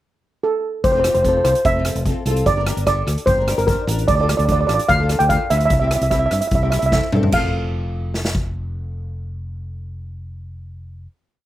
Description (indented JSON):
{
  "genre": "calypso",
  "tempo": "148 BPM",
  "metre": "4/4",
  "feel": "straight",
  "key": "F major",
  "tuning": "A4 = 440 Hz",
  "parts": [
    { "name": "steel pan", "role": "melody", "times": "0.4-11.1 s", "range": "A4 to G5", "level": "-18 LUFS", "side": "right 1 dB", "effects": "slapback echo" },
    { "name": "fingered electric bass", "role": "bass", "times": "0.8-11.1 s", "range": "F1 to G2", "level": "-22 LUFS", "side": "equal", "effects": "none" },
    { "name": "street-band drum kit", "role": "drums", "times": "0.8-8.4 s", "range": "crash cymbal, hi-hat, kick drum, rim click, snare drum, toms", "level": "-23 LUFS", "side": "equal", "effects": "none" },
    { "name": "flamenco guitar", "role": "accompaniment", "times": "0.9-11.1 s", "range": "C4 to C5", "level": "-27 LUFS", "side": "left 1 dB", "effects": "double-tracked left and right, slapback echo" }
  ],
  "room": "little or no reverb",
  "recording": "recorded outdoors, with no room sound",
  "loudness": "-16 LUFS",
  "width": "side -14 dB against mid",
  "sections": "0.0-0.8 pickup bar; 0.8-7.3 verse; 7.3-10.6 final chord",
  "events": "drum fill 6.9-7.3",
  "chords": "0.0 N.C.; 0.8 F; 2.5 Gm; 4.1 Dm; 5.7 C; 7.3 F",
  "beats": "0.03 0.43 | 0.84 1.24 1.65 2.06 | 2.46 2.87 3.27 3.68 | 4.08 4.49 4.89 5.30 | 5.71 6.11 6.52 6.92 | 7.33 7.74 8.14 8.55 | 8.96 9.37 9.78 10.18"
}